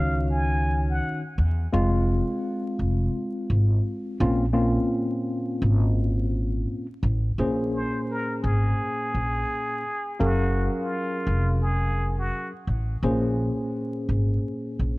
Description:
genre	hip hop, boom-bap hip-hop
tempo	85 BPM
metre	4/4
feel	swing 63% on 16ths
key	Bb minor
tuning	A4 = 439 Hz
part	trumpet with plunger mute	melody	0.0-1.2, 7.7-12.5 s	F4 to Ab5	-30 LUFS	equal	high-pass filter, low-pass filter, digital delay
part	tine electric piano	accompaniment	0.0-15.0 s	Bb2 to F5	-27 LUFS	left 1 dB	medium stereo tremolo, high-pass filter, low-pass filter
part	upright bass	bass	0.0-15.0 s	F1 to E2	-23 LUFS	equal	none
room	light reverb, small room ambience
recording	worn, warbling old tape, cassette tape, vinyl crackle, warbly pitch drift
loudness	-23 LUFS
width	side -21 dB against mid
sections	0.0-7.4 A section; 7.4-15.0 B section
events	none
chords	0.0 Ebm7; 1.7 Fm; 4.2 Bbmadd9; 7.4 Bbm7; 10.2 Gbmaj9; 13.0 Bbm7

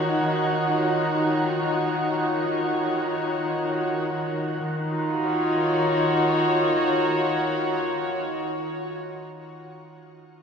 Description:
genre	ambient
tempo	free time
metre	none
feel	none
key	Eb minor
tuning	A4 = 441 Hz
part	warm chamber string section	sustained chords	0.0-9.0 s	Eb3 to Db5	-22 LUFS	equal	shimmer reverb
part	wind-like tuned noise texture	texture	0.0-4.7 s	Gb6	-37 LUFS	right 2 dB	built-in reverb, shimmer reverb
room	wet cathedral reverb, RT60 4.9 s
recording	worn, warbling old tape, cassette tape, warbly pitch drift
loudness	-22 LUFS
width	side -6 dB against mid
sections	0.0-4.6 A section; 4.6-8.9 B section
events	none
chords	0.0 Ebm7

